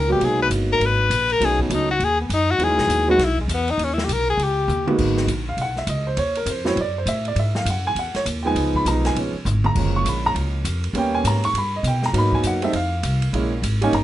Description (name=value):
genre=jazz, small-group swing and bop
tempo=201 BPM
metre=4/4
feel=swing 62% on 8ths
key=G# minor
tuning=A4 = 441 Hz
part: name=clear tenor saxophone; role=melody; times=0.0-5.0 s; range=G#3 to B4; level=-20 LUFS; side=left 3 dB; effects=none
part: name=upright bass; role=bass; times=0.0-14.0 s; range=F#1 to B2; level=-23 LUFS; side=equal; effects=none
part: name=warm upright piano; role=accompaniment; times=0.1-14.0 s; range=E#3 to C#6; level=-22 LUFS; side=right 1 dB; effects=none
part: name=open jazz drum kit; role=drums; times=0.2-14.0 s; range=crash cymbal, hi-hat, kick drum, ride cymbal, snare drum, toms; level=-29 LUFS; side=right 2 dB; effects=none
room=moderate club reverb, RT60 0.8 s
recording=nothing above 10.9 kHz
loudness=-18 LUFS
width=side -13 dB against mid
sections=0.0-5.0 A section; 5.0-14.0 A section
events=tenor saxophone solo 0.0-5.0; drum fill 4.7, 9.5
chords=0.2 G#m7; 1.4 B7; 2.6 Emaj7; 3.8 D#7; 5.0 G#m7; 6.2 D#m; 6.8 F#m7b5; 7.4 D#madd9; 8.6 C#7; 9.8 F#maj9; 10.9 D#7b13; 12.1 G#m7; 12.7 F5; 13.3 A#m7b5